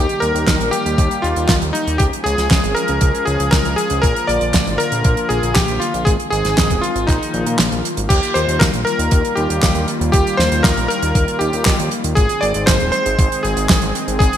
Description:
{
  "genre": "italo disco",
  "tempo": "118 BPM",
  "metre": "4/4",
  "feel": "straight",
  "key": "Eb major",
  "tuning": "A4 = 441 Hz",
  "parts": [
    { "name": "bright electric grand piano", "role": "melody", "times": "0.0-14.4 s", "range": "Eb4 to D5", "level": "-19 LUFS", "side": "left 1 dB", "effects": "digital delay" },
    { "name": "warm analog pad", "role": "sustained chords", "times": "0.0-14.4 s", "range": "D3 to Ab4", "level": "-24 LUFS", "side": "left 1 dB", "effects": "chorus" },
    { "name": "fat analog bass", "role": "bass", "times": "0.0-14.3 s", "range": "Eb1 to Bb2", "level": "-21 LUFS", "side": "equal", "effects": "tube saturation" },
    { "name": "damped 70s drum kit", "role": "drums", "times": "0.1-14.4 s", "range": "crash cymbal, handclaps, hi-hat, snare drum", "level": "-20 LUFS", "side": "right 2 dB", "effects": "small room ambience, gated reverb" },
    { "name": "electronic kick drum", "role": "drums", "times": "0.5-14.3 s", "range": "none", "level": "-17 LUFS", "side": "equal", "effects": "small room ambience" }
  ],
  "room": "moderate lush hall reverb, RT60 1.7 s",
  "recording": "bright 1980s-style digital production",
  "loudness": "-14 LUFS",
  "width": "side -10 dB against mid",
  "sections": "0.0-8.1 A section; 8.1-14.4 B section",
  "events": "kick drops out 7.6-8.1",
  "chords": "0.0 Eb; 2.0 Db; 4.0 Bb; 6.1 Ab; 7.1 Bbsus4; 8.1 Ebadd9; 12.2 Ab"
}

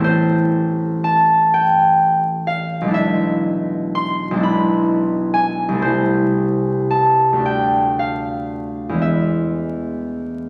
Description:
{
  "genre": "classical, solo harp piece",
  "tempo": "36-44 BPM (dotted quarters)",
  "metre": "6/8",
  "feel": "rubato",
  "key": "A minor",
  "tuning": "A4 = 440 Hz",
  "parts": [
    { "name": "concert harp", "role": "solo", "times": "0.0-10.5 s", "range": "A1 to C6", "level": "-18 LUFS", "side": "equal", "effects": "none" }
  ],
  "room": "wet recital hall reverb, RT60 1.6 s",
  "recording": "vinyl crackle",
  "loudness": "-18 LUFS",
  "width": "mono",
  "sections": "0.0-10.5 A section",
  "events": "none",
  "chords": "0.0 Am; 2.9 E7/B; 5.8 Am/C; 7.4 Dm; 9.0 E"
}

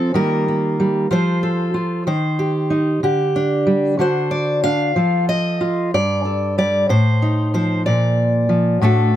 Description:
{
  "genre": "folk, solo fingerstyle acoustic guitar",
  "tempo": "62 BPM (dotted quarters)",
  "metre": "6/8",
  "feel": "straight",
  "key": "unclear",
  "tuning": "A4 = 440 Hz",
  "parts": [
    { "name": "fingerpicked steel-string acoustic guitar", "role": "solo", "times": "0.0-9.2 s", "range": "G2 to F5", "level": "-16 LUFS", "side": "equal", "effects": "none" }
  ],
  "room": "light reverb",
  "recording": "close, detailed microphones",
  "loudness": "-16 LUFS",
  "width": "side -12 dB against mid",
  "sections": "0.0-9.2 A section",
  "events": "none",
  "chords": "0.2 Ebadd9; 1.1 F; 2.1 Cm/Eb; 3.0 Dsus4; 4.0 D; 5.0 F; 5.9 Gsus2; 6.9 F7/A; 7.9 Bb"
}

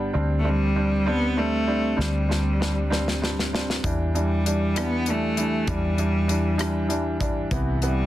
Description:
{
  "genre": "six-eight pop ballad",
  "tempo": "65 BPM (dotted quarters)",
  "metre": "6/8",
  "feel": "straight",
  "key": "unclear",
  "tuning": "A4 = 440 Hz",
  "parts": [
    { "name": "bright upright piano", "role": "accompaniment", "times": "0.0-8.1 s", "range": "C3 to D4", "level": "-27 LUFS", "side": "equal", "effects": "none" },
    { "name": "vintage muted fingered electric bass", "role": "bass", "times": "0.0-8.1 s", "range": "G1 to E2", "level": "-26 LUFS", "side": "equal", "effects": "none" },
    { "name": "clear cello", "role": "melody", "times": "0.4-8.1 s", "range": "G3 to B3", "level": "-26 LUFS", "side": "equal", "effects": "digital delay" },
    { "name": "modern studio drum kit", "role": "drums", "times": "2.0-8.0 s", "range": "hi-hat, kick drum, rim click, snare drum", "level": "-29 LUFS", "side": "left 1 dB", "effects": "none" }
  ],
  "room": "light reverb",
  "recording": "dense, heavily limited modern master",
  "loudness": "-21 LUFS",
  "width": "side -14 dB against mid",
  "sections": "0.0-8.1 A section",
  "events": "drum fill 2.0-3.8",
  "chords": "0.1 D7sus4; 3.8 Em7; 7.5 Cmaj7"
}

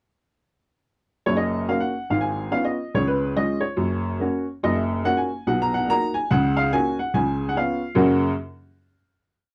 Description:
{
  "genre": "jazz, stride piano",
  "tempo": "143 BPM",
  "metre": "4/4",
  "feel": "swing 61% on 8ths",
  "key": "F# major",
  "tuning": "A4 = 440 Hz",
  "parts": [
    { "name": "warm upright piano", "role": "solo", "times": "1.3-8.3 s", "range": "F#1 to A#5", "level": "-23 LUFS", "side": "equal", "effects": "none" }
  ],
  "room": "moderate booth ambience, RT60 0.2 s",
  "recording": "dry, close 1970s-style studio recording",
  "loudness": "-23 LUFS",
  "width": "mono",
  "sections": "1.3-8.0 A section; 8.0-9.5 final chord",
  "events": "none",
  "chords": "1.3 F#; 2.1 C#7/G#; 2.9 C#; 3.8 F#; 5.5 Bmaj7; 6.3 F#/C#; 7.1 C#7; 8.0 F#"
}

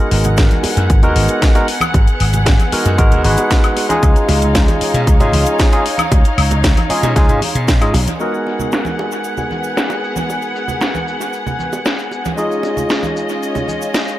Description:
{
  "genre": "nu-disco, nu disco",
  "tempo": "115 BPM",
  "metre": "4/4",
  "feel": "straight",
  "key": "G# dorian",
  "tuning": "A4 = 439 Hz",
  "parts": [
    { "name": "barky tine electric piano", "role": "accompaniment", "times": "0.0-14.2 s", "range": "G#3 to B4", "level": "-19 LUFS", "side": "equal", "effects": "dub echo" },
    { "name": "dark studio violin section", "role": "sustained chords", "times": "0.0-14.2 s", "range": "B3 to F#5", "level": "-22 LUFS", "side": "left 1 dB", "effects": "vintage 12-bit sampler grit, sidechain pumping" },
    { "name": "slap bass", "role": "bass", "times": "0.1-8.0 s", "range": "G#1 to B2", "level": "-15 LUFS", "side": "equal", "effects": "none" },
    { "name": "house drum kit", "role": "drums", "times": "0.1-14.2 s", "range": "hi-hat, shaker, snare drum, woodblock", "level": "-21 LUFS", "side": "left 1 dB", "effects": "low-pass filter on hats, low-pass filter on snare, low-pass filter on perc, low-pass filter on room, dub echo" },
    { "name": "bongos, cabasa and congas", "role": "percussion", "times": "0.1-14.2 s", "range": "none", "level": "-25 LUFS", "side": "right 3 dB", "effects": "none" },
    { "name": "electronic kick drum", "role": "drums", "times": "0.4-7.8 s", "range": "none", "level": "-12 LUFS", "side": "equal", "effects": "none" }
  ],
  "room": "light reverb",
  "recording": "echo-heavy mix",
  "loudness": "-12 LUFS",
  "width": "side -14 dB against mid",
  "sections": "0.0-8.2 A section; 8.2-14.2 B section",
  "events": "none",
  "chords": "0.0 G#m7; 4.0 C#add9; 8.2 G#m7; 12.4 C#add9"
}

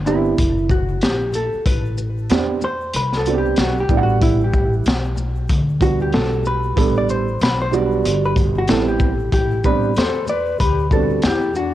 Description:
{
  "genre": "hip hop, jazz-hop",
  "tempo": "94 BPM",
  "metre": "4/4",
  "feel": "swing 60% on 16ths",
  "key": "A dorian",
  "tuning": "A4 = 441 Hz",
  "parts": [
    { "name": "upright bass", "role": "bass", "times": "0.0-11.7 s", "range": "F#1 to E2", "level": "-22 LUFS", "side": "left 1 dB", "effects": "none" },
    { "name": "vintage hollow-body jazz guitar", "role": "melody", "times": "0.1-11.7 s", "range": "E4 to D5", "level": "-22 LUFS", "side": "left 1 dB", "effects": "analog delay" },
    { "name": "dark upright piano", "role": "accompaniment", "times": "0.1-11.2 s", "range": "G3 to F#5", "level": "-21 LUFS", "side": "right 7 dB", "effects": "cassette tape" },
    { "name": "crunchy breakbeat drum kit", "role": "drums", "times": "0.1-11.7 s", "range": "hi-hat, kick drum, shaker, snare drum", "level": "-20 LUFS", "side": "left 1 dB", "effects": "none" },
    { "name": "congas and tube shaker", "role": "percussion", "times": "0.1-11.7 s", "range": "none", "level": "-37 LUFS", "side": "left 10 dB", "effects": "none" },
    { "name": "breathy mellow concert flute", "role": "second line", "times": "9.3-11.7 s", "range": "D4 to B4", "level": "-24 LUFS", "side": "left 8 dB", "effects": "cassette tape" }
  ],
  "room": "light reverb, small room reverb",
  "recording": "home recording on cassette",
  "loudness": "-16 LUFS",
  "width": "side -13 dB against mid",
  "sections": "0.0-9.3 A section; 9.3-11.7 B section",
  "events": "hollow-body jazz guitar solo 0.0-9.3",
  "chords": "0.0 Am11; 3.9 Gmaj9; 8.7 Am9; 9.3 Am11"
}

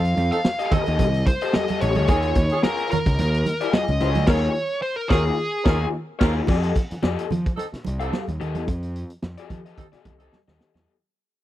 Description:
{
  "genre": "funk",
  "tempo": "109 BPM",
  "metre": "4/4",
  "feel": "straight",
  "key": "F mixolydian",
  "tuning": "A4 = 439 Hz",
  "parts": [
    { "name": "nasal lead guitar with a parked wah", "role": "melody", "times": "0.0-5.9 s", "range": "Ab4 to F5", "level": "-25 LUFS", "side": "equal", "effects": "overdrive" },
    { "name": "fuzz picked electric bass", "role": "bass", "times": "0.0-10.9 s", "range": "A1 to F3", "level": "-24 LUFS", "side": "equal", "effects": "overdrive" },
    { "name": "vintage drum kit", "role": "drums", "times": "0.0-10.9 s", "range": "crash cymbal, hi-hat, kick drum, snare drum", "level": "-22 LUFS", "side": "equal", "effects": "none" },
    { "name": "congas", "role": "percussion", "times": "0.2-10.9 s", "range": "none", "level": "-29 LUFS", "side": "right 5 dB", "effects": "none" },
    { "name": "mellow horn section", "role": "second line", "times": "0.3-10.4 s", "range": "C4 to Bb4", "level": "-28 LUFS", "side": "right 1 dB", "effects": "none" },
    { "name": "raw garage guitar", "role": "accompaniment", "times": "0.6-10.9 s", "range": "F4 to F5", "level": "-28 LUFS", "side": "left 8 dB", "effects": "overdrive" }
  ],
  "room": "small room ambience",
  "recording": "dry, close 1970s-style studio recording",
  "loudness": "-20 LUFS",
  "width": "side -13 dB against mid",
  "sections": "0.0-6.5 A section; 6.5-10.9 B section",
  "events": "band accent 4.3-6.5; fade-out 6.5-10.9; drum fill 10.3-10.9",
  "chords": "0.0 F9; 2.1 Eb9sus4; 6.5 F9"
}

